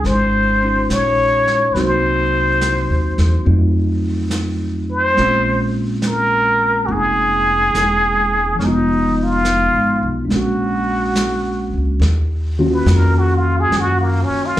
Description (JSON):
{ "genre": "jazz ballad", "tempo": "70 BPM", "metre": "4/4", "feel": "swing 68% on 8ths", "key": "Bb minor", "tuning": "A4 = 440 Hz", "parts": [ { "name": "trumpet with plunger mute", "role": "melody", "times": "0.0-14.6 s", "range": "Bb3 to Db5", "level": "-17 LUFS", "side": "equal", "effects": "slapback echo" }, { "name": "mellow tine electric piano", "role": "accompaniment", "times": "0.0-14.6 s", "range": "Eb3 to Gb4", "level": "-20 LUFS", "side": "equal", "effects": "slapback echo" }, { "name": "upright bass", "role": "bass", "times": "0.0-14.6 s", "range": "E1 to Gb2", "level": "-19 LUFS", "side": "equal", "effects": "none" }, { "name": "vintage brush drum kit", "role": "drums", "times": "0.0-14.6 s", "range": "brushed snare drum, hi-hat, snare drum", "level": "-27 LUFS", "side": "right 1 dB", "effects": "none" } ], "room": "moderate club reverb, RT60 0.8 s", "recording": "live gig heard through the venue's PA, club reverb", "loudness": "-14 LUFS", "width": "side -13 dB against mid", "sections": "0.0-12.0 A section; 12.0-14.6 B section", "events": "muted trumpet solo 12.0-14.6", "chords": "0.0 Dbmaj9; 1.8 Cm7b5; 3.5 F7b9; 5.2 Bbm9; 8.6 Fm7b5; 10.3 Bb7alt; 12.0 Ebm9" }